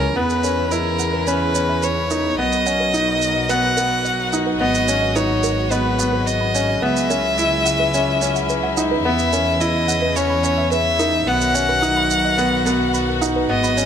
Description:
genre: piano and strings electronica.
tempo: 108 BPM.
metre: 4/4.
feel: straight.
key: B major.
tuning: A4 = 441 Hz.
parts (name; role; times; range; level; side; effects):
rich violin; melody; 0.0-13.9 s; A#4 to F#5; -20 LUFS; left 1 dB; ping-pong delay.
rich string quartet; sustained chords; 0.0-13.9 s; C#3 to A#4; -26 LUFS; left 2 dB; none.
bright upright piano; riff; 0.0-13.9 s; B3 to E4; -22 LUFS; equal; ping-pong delay.
rich symphonic double bass section; bass; 0.0-13.9 s; G#1 to E2; -24 LUFS; equal; none.
soft round pluck; arpeggios; 0.2-13.7 s; A#4 to B5; -29 LUFS; right 3 dB; chorus, ping-pong delay.
shaker; drums; 0.3-13.9 s; none; -27 LUFS; right 7 dB; none.
room: moderate huge ambient reverb, RT60 7.6 s.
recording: none.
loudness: -16 LUFS.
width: side -8 dB against mid.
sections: 0.2-13.9 A section.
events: filter sweep on synth arpeggio sound 0.2-13.9.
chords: 0.2 E6; 2.4 Bmaj7; 4.6 G#m7; 6.8 C#madd9; 9.1 E6; 11.3 Bmaj7.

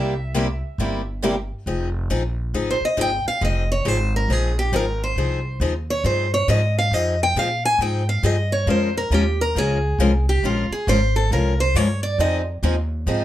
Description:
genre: acoustic string swing (jazz manouche).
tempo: 137 BPM.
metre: 4/4.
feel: swing 63% on 8ths.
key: F minor.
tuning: A4 = 441 Hz.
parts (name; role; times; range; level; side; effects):
picked steel-string acoustic guitar; melody; 0.0-12.4 s; F4 to Ab5; -22 LUFS; right 1 dB; none.
picked steel-string acoustic guitar; accompaniment; 0.0-13.2 s; C3 to Bb4; -24 LUFS; left 4 dB; none.
picked swing-style acoustic guitar; accompaniment; 0.0-1.3, 12.2-13.2 s; C3 to Ab4; -27 LUFS; right 6 dB; none.
upright bass; bass; 0.0-13.2 s; F1 to Bb2; -22 LUFS; equal; none.
room: moderate studio reverb, RT60 0.5 s.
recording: none.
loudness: -18 LUFS.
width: side -13 dB against mid.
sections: 0.0-1.7 A section; 1.7-13.2 B section.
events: steel-string acoustic guitar solo 1.7-13.2.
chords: 0.0 C7; 1.7 Fm9; 8.7 Bbm9; 12.2 Fm7.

